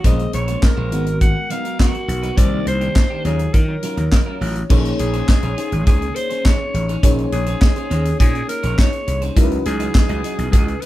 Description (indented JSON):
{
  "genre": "early-eighties boogie funk",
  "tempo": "103 BPM",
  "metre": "4/4",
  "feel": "straight",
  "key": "Bb minor",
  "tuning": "A4 = 442 Hz",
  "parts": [
    { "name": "growling alto saxophone", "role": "melody", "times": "0.0-10.9 s", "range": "Gb4 to Gb5", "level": "-25 LUFS", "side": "equal", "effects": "none" },
    { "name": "FM electric piano with soft pad layer", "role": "accompaniment", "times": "0.0-10.9 s", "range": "Gb3 to Db5", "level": "-26 LUFS", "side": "left 2 dB", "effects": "chorus" },
    { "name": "electric guitar at the edge of break-up", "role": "riff", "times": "0.0-10.9 s", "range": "Eb3 to Eb5", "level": "-29 LUFS", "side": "right 2 dB", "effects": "none" },
    { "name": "gritty slap bass", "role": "bass", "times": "0.0-10.7 s", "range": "Ab1 to Eb3", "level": "-21 LUFS", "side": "equal", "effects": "overdrive" },
    { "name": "tight funk drum kit", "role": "drums", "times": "0.0-10.9 s", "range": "crash cymbal, handclaps, hi-hat, kick drum, snare drum", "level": "-16 LUFS", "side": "equal", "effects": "none" }
  ],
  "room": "light reverb",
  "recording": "band playing live in one room",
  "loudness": "-15 LUFS",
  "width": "side -15 dB against mid",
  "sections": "0.0-4.7 A section; 4.7-10.9 B section",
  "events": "none",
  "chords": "0.0 Bbm9; 0.9 Abm9; 2.4 Cm9; 3.2 Ebm9; 4.7 Bbm11; 9.4 Dbm11",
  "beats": "| 0.04 0.63 1.21 1.79 | 2.38 2.96 3.54 4.12 | 4.71 5.29 5.87 6.45 | 7.04 7.62 8.20 8.78 | 9.37 9.95 10.53"
}